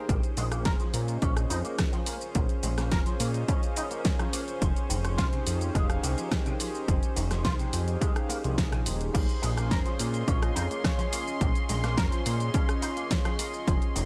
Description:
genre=nu-disco, nu disco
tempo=106 BPM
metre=4/4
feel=straight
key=Bb dorian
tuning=A4 = 440 Hz
part: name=warm analog pad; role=accompaniment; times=0.0-13.8 s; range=Db4 to F5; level=-38 LUFS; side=equal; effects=chorus, cassette tape, analog delay
part: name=dark studio string section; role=sustained chords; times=0.0-14.1 s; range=Db4 to C6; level=-41 LUFS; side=equal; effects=sidechain pumping
part: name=electric guitar with an envelope filter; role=riff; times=0.1-14.0 s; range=C3 to Bb4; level=-40 LUFS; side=equal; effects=ensemble chorus, analog delay
part: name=fat analog bass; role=bass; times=0.1-14.1 s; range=Eb1 to Bb2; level=-32 LUFS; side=equal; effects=none
part: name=electronic kick drum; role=drums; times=0.1-13.8 s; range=none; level=-30 LUFS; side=equal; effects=overdrive
part: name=pop drum kit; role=drums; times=0.1-14.1 s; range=crash cymbal, hi-hat, rim click, shaker, snare drum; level=-36 LUFS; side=equal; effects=none
room=little or no reverb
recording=none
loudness=-28 LUFS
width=mono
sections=0.0-9.1 A section; 9.1-14.1 B section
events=drop 9.1-14.1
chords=0.1 Bbm7; 4.6 Fm9; 9.1 Bbm7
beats=| 0.09 0.66 1.22 1.79 | 2.35 2.92 3.49 4.05 | 4.62 5.18 5.75 6.32 | 6.88 7.45 8.02 8.58 | 9.15 9.71 10.28 10.85 | 11.41 11.98 12.54 13.11 | 13.68

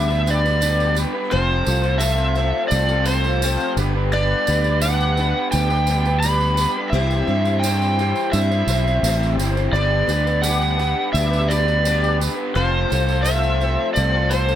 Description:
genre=folk rock and heartland rock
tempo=85 BPM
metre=4/4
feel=straight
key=unclear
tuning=A4 = 445 Hz
part: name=overdriven slide guitar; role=melody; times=0.0-14.6 s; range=C5 to B5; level=-22 LUFS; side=equal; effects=plate reverb
part: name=picked twelve-string acoustic guitar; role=accompaniment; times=0.0-14.6 s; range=C3 to C5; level=-27 LUFS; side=left 7 dB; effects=ensemble chorus, plate reverb
part: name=raw garage guitar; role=riff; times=0.0-14.6 s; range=C3 to C5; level=-25 LUFS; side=right 1 dB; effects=overdrive
part: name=fingered electric bass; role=bass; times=0.0-14.6 s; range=F1 to G2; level=-20 LUFS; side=equal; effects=none
part: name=tambourine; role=percussion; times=0.1-14.6 s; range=none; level=-32 LUFS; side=right 9 dB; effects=none
room=light reverb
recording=none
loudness=-17 LUFS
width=side -11 dB against mid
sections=0.0-14.6 A section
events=none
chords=0.0 G; 1.3 F; 3.8 G; 6.9 C; 9.8 G; 12.6 F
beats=0.63 | 1.33 2.03 2.73 3.43 | 4.13 4.83 5.53 6.24 | 6.94 7.64 8.34 9.05 | 9.75 10.45 11.16 11.86 | 12.56 13.27 13.97

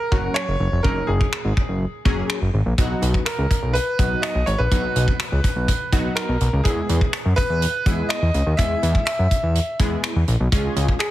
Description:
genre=dance-pop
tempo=124 BPM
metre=4/4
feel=straight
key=unclear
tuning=A4 = 441 Hz
part: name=bright baby grand piano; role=melody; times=0.0-11.1 s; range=G#4 to E5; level=-25 LUFS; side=right 1 dB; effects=digital delay
part: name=funky polysynth comp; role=accompaniment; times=0.1-11.0 s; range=F#3 to G#4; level=-28 LUFS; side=equal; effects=chorus, sidechain pumping
part: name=fat analog bass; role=bass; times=0.1-10.9 s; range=E#1 to F#2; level=-21 LUFS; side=equal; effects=sidechain pumping
part: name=modern studio drum kit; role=drums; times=0.1-11.1 s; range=finger snaps, hi-hat, kick drum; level=-22 LUFS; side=equal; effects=none
room=light reverb, small room ambience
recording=heavily compressed radio sound, multiband compression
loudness=-18 LUFS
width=side -14 dB against mid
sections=0.0-11.1 A section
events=none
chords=0.0 F#; 2.8 B; 6.7 E; 10.5 C#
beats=0.36 | 0.85 1.33 1.81 2.30 | 2.78 3.27 3.75 4.23 | 4.72 5.20 5.68 6.17 | 6.65 7.14 7.62 8.10 | 8.59 9.07 9.55 10.04 | 10.52 11.01

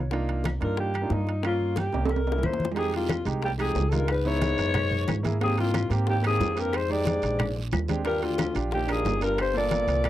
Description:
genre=Afro-Cuban jazz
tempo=182 BPM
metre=4/4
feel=straight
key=C minor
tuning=A4 = 440 Hz
part: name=clear concert grand piano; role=accompaniment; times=0.0-10.0 s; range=Ab3 to Bb4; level=-32 LUFS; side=right 4 dB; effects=none
part: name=upright bass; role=bass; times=0.0-10.1 s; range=G1 to G#2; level=-28 LUFS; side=equal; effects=none
part: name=bongos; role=percussion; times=0.1-10.1 s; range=none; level=-36 LUFS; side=left 7 dB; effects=none
part: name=congas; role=percussion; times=0.1-10.1 s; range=none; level=-34 LUFS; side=left 2 dB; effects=none
part: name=timbales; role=percussion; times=0.1-10.1 s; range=none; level=-34 LUFS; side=right 8 dB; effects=none
part: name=claves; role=percussion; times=0.5-10.1 s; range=none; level=-40 LUFS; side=left 5 dB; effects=none
part: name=growling alto saxophone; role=melody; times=0.6-10.1 s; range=Eb4 to D5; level=-28 LUFS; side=left 1 dB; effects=none
part: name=dark baritone saxophone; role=second line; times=2.8-10.1 s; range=C2 to Bb2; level=-33 LUFS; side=left 4 dB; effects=none
part: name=guiro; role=percussion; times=2.8-10.1 s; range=none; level=-44 LUFS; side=right 8 dB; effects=none
room=little or no reverb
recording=dry, close 1970s-style studio recording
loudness=-24 LUFS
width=side -13 dB against mid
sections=0.0-2.8 A section; 2.8-10.1 B section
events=drum fill 1.9-2.8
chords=0.1 Cm11; 1.4 Gm7b5; 2.1 C7b9; 2.8 Fm9; 4.1 Dbm7; 4.7 F#9; 5.4 Abmaj9; 6.7 Fm7; 7.4 Bb13; 8.1 Ebmaj7; 9.4 Gm7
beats=| 0.12 0.45 0.78 1.11 | 1.44 1.77 2.10 2.43 | 2.76 3.09 3.42 3.75 | 4.08 4.42 4.75 5.08 | 5.41 5.74 6.07 6.40 | 6.73 7.06 7.39 7.72 | 8.05 8.38 8.72 9.05 | 9.38 9.71 10.04

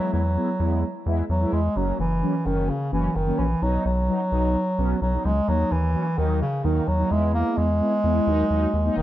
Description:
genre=synth-pop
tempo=129 BPM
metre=4/4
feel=straight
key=unclear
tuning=A4 = 441 Hz
part: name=mellow bass clarinet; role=melody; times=0.0-9.0 s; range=Db3 to Bb3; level=-24 LUFS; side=equal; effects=slapback echo
part: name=mellow synth brass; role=accompaniment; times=0.0-9.0 s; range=Gb3 to E4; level=-28 LUFS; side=equal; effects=chorus, phaser
part: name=round analog bass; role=bass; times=0.1-9.0 s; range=Fb1 to E2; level=-24 LUFS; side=equal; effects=none
room=light reverb, studio reverb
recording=none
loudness=-20 LUFS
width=side -13 dB against mid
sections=0.0-9.0 A section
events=none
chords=0.0 E; 1.8 Gb; 3.6 B; 5.5 Ebm; 7.1 E; 8.3 Ebm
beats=0.36 0.83 1.29 | 1.76 2.23 2.69 3.15 | 3.62 4.08 4.55 5.01 | 5.48 5.95 6.41 6.88 | 7.34 7.81 8.27 8.74

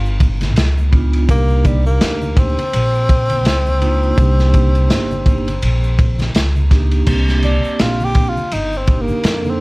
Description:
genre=hip hop, jazz-hop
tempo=83 BPM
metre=4/4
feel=swing 57% on 16ths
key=C minor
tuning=A4 = 441 Hz
part: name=breathy tenor saxophone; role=melody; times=0.0-9.6 s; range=G3 to G4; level=-21 LUFS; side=left 1 dB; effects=none
part: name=upright bass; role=bass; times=0.0-9.6 s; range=G1 to F2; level=-16 LUFS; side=equal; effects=none
part: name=tube shaker and congas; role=percussion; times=0.1-9.6 s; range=none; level=-29 LUFS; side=equal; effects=none
part: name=crunchy breakbeat drum kit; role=drums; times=0.2-9.4 s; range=crash cymbal, hi-hat, kick drum, ride cymbal, snare drum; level=-17 LUFS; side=equal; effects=none
part: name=vibraphone with medium mallets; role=accompaniment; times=0.9-9.6 s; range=Bb3 to A4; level=-22 LUFS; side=right 3 dB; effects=none
room=little or no reverb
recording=dark, warm production, vinyl crackle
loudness=-12 LUFS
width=side -24 dB against mid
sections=0.0-7.1 A section; 7.1-9.6 B section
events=tenor saxophone solo 7.1-9.6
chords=0.0 G7b13; 1.3 Cm9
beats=0.56 | 1.29 2.01 2.73 3.46 | 4.18 4.90 5.62 6.35 | 7.07 7.79 8.52 9.24

